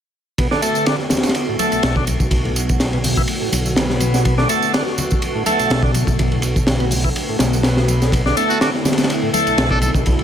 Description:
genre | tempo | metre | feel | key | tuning
breakbeat, breaks | 124 BPM | 4/4 | swing 54% on 16ths | B minor | A4 = 440 Hz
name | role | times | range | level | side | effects
phased analog pad | sustained chords | 0.4-10.2 s | D3 to F#4 | -24 LUFS | right 1 dB | phaser, chorus, sidechain pumping
bright tonewheel organ | riff | 0.4-10.2 s | A2 to A3 | -21 LUFS | equal | overdrive, slow rotary speaker, ping-pong delay
crunchy breakbeat drum kit | drums | 0.4-10.2 s | hi-hat, kick drum, ride cymbal, snare drum | -19 LUFS | equal | none
tambourine | drums | 0.4-10.2 s | none | -29 LUFS | right 4 dB | overdrive
congas | percussion | 1.1-9.9 s | none | -30 LUFS | left 4 dB | none
fat analog bass | bass | 1.7-10.2 s | B1 | -20 LUFS | equal | none
trumpet with metal mute | melody | 8.5-9.9 s | F#4 to A4 | -25 LUFS | equal | small speaker sound, ping-pong delay
room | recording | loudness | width
small room ambience | none | -15 LUFS | side -9 dB against mid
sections
0.4-10.2 A section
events
none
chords
0.4 Bm7

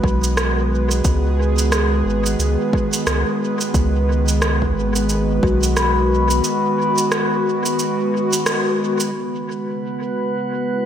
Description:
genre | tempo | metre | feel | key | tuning
ambient dub | 89 BPM | 4/4 | swing 60% on 16ths | unclear | A4 = 440 Hz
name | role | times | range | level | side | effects
airy breathy pad | sustained chords | 0.0-10.9 s | C#3 to B4 | -21 LUFS | equal | chorus
vibraphone with medium mallets | arpeggios | 0.0-9.2 s | F#4 to B5 | -25 LUFS | left 3 dB | low-pass filter, dub echo
warm sub bass | bass | 0.0-6.4 s | G#1 to C#2 | -19 LUFS | equal | none
electronic kick drum | drums | 0.0-5.6 s | none | -21 LUFS | equal | overdrive
electronic cabasa and rim click | drums | 0.2-9.1 s | none | -23 LUFS | right 1 dB | dub echo
drifting glass-harmonics texture | texture | 9.5-10.9 s | B3 to B4 | -25 LUFS | right 3 dB | chorus, built-in reverb
room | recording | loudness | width
moderate echo chamber reverb, RT60 2.2 s | none | -16 LUFS | side -9 dB against mid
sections
0.0-9.1 A section; 9.1-10.9 B section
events
filter sweep on vibraphone 0.0-9.1; band accent 8.5-8.8; filter sweep on analog synth pad 9.1-10.9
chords
0.0 G#m; 9.1 C#m7

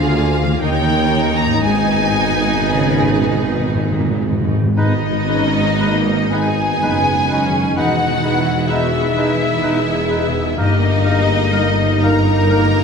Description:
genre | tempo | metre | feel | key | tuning
classical, slow romantic movement for symphony orchestra | 55-66 BPM | 3/4 | rubato | G# minor | A4 = 440 Hz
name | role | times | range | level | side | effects
clear studio violin section | melody | 0.0-12.8 s | D#5 to A#5 | -22 LUFS | left 4 dB | none
rich symphonic violin section | second line | 0.0-12.8 s | D#4 to C#5 | -25 LUFS | left 1 dB | none
rich studio viola section | accompaniment | 0.0-12.8 s | G3 to G#4 | -23 LUFS | right 2 dB | none
concert harp | arpeggios | 0.0-12.8 s | E2 to D#5 | -24 LUFS | left 8 dB | none
rich studio double bass section | bass | 0.0-12.8 s | E1 to D#2 | -22 LUFS | right 2 dB | none
warm symphonic cello section | bass | 0.0-12.8 s | D2 to C#3 | -23 LUFS | right 1 dB | none
warm tuba | bass | 0.0-12.8 s | E1 to D#2 | -24 LUFS | right 4 dB | none
timpani | percussion | 1.6-4.7 s | G#2 | -22 LUFS | left 1 dB | none
clear clarinet | second line | 4.8-12.7 s | D#4 | -27 LUFS | right 1 dB | none
silver concert flute | second line | 4.8-12.8 s | D#5 to A#5 | -24 LUFS | left 1 dB | none
warm oboe | second line | 4.8-12.7 s | A#4 to B4 | -30 LUFS | equal | none
mellow bassoon | accompaniment | 4.8-12.7 s | G#3 to A#3 | -29 LUFS | right 1 dB | none
mellow French horn section | sustained chords | 4.8-12.8 s | G#3 to D#4 | -22 LUFS | left 1 dB | none
room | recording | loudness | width
wet scoring stage reverb, RT60 1.7 s | minimal, uncompressed stereo recording | -14 LUFS | side -6 dB against mid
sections
0.0-4.8 A section; 4.8-12.8 B section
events
timpani fill 1.6-4.8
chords
0.0 A#7/D; 0.6 D#7; 1.6 G#m; 7.8 Emaj7; 10.6 D#/G

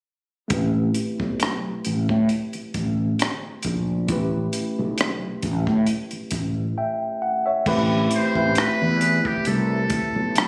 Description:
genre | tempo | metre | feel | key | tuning
R&B, neo-soul | 67 BPM | 4/4 | swing 53% on 16ths | unclear | A4 = 440 Hz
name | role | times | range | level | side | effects
tine electric piano | accompaniment | 0.5-10.5 s | A3 to G5 | -28 LUFS | equal | low-pass filter, plate reverb
fretless electric bass | bass | 0.5-10.3 s | A1 to A2 | -25 LUFS | equal | none
compact cocktail drum kit | drums | 0.5-10.5 s | crash cymbal, hi-hat, kick drum, rim click | -29 LUFS | equal | none
trumpet with metal mute | melody | 8.1-10.5 s | G4 to C5 | -26 LUFS | equal | plate reverb, tape echo
room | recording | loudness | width
light reverb | recorded on a phone in the room, studio reverb, compression | -23 LUFS | mono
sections
0.5-7.7 A section; 7.7-10.5 B section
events
filter sweep on tine electric piano 0.5-7.7; silent gap 6.8-7.7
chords
0.5 Am9; 4.1 A9; 7.7 Am9

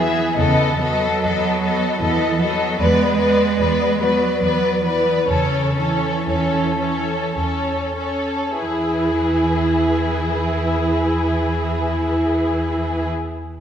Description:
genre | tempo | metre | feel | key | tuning
classical, slow romantic movement for string orchestra | 46-79 BPM | 3/4 | rubato | E major | A4 = 441 Hz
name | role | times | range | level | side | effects
dark studio violin section | melody | 0.0-13.1 s | B4 to E5 | -26 LUFS | left 4 dB | none
warm studio violin section | second line | 0.0-13.1 s | G#4 to B4 | -22 LUFS | left 2 dB | none
rich studio viola section | accompaniment | 0.0-13.1 s | B3 to E4 | -23 LUFS | equal | none
rich studio cello section | bass | 0.0-13.1 s | C#3 to G#3 | -23 LUFS | right 3 dB | none
warm studio double bass section | bass | 0.0-13.1 s | E2 | -25 LUFS | right 1 dB | none
room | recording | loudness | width
wet recital hall reverb, RT60 1.6 s | recorded in a church or concert hall | -17 LUFS | side -9 dB against mid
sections
0.0-8.6 A section; 8.6-12.3 B section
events
slowing down 1.6-8.6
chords
0.4 B7/E; 2.8 E7; 5.3 A/E; 8.6 E

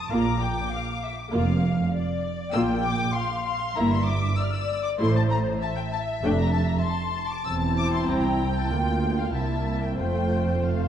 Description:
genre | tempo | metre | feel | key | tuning
quick classical-period movement for string orchestra | 97 BPM | 4/4 | rubato | unclear | A4 = 441 Hz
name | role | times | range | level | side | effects
warm studio violin section | melody | 0.0-10.9 s | F5 to F6 | -32 LUFS | left 5 dB | none
rich studio violin section | second line | 0.0-10.9 s | C5 to Bb5 | -31 LUFS | left 3 dB | none
warm studio viola section | accompaniment | 0.1-10.9 s | A3 to F4 | -28 LUFS | equal | none
rich studio double bass section | bass | 0.1-10.9 s | E1 to D2 | -28 LUFS | right 2 dB | none
warm studio cello section | bass | 0.1-10.9 s | C2 to Bb2 | -29 LUFS | right 2 dB | none
room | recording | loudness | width
moderate concert hall reverb, RT60 1.9 s | dark, warm production | -22 LUFS | side -9 dB against mid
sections
0.0-10.9 A section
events
none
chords
0.1 Bb; 2.5 Bb5; 3.8 Edim/G; 5.0 Am; 6.2 Dm/F; 7.5 C/E; 8.7 Bb/D; 9.3 C7; 10.0 F

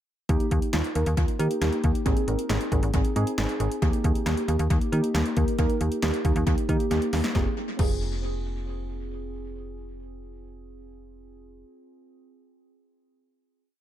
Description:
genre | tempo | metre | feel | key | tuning
synth-pop | 136 BPM | 4/4 | straight | F minor | A4 = 441 Hz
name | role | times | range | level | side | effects
muted felt-like synth keys | accompaniment | 0.3-12.3 s | Bb3 to Bb4 | -28 LUFS | right 1 dB | chorus, tape echo
slap-like FM bass | bass | 0.3-11.6 s | F1 to Eb3 | -28 LUFS | equal | none
deep house drum kit | drums | 0.3-7.9 s | crash cymbal, hi-hat, kick drum, snare drum | -27 LUFS | equal | tape echo
room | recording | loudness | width
moderate spring reverb, RT60 1.1 s, digital ambience | echo-heavy mix | -23 LUFS | side -11 dB against mid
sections
0.3-7.4 pre-chorus; 7.4-10.9 final chord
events
drum fill 6.9-7.4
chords
0.3 Eb; 2.1 Ab; 3.8 Eb; 7.4 Fm

